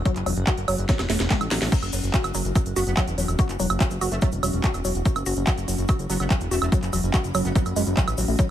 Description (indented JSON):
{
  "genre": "psychedelic trance",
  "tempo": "144 BPM",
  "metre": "4/4",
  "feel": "straight",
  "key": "unclear",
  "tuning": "A4 = 440 Hz",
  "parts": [
    { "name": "fat analog bass", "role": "bass", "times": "0.0-8.4 s", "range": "E1 to A1", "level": "-26 LUFS", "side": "equal", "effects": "none" },
    { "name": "granular cloud pad", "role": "texture", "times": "0.0-8.5 s", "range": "C#4 to F#6", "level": "-33 LUFS", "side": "equal", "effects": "built-in reverb, sidechain pumping" },
    { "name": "woody wave-folded pluck", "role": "riff", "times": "0.1-8.5 s", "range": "F#3 to F#4", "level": "-29 LUFS", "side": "moving between left 5 dB and right 4 dB", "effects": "chorus, auto-pan, sidechain pumping, tape echo" },
    { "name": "electronic kick drum", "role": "drums", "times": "0.1-8.5 s", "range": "none", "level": "-22 LUFS", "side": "equal", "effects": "none" },
    { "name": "techno drum kit", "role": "drums", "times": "0.1-8.5 s", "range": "crash cymbal, handclaps, hi-hat, snare drum, woodblock", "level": "-28 LUFS", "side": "right 2 dB", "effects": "none" },
    { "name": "tube shaker", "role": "percussion", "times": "1.7-8.5 s", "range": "none", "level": "-37 LUFS", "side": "left 6 dB", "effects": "none" },
    { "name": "metallic wobble bass", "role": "second line", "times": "2.8-7.6 s", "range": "A3 to B3", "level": "-38 LUFS", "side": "right 3 dB", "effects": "wide subtle chorus, sidechain pumping, high-pass filter, dub echo" }
  ],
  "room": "little or no reverb",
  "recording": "none",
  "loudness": "-21 LUFS",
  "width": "side -11 dB against mid",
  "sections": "0.0-8.5 A section",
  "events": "drum fill 0.9-1.7",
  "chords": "0.0 F#5"
}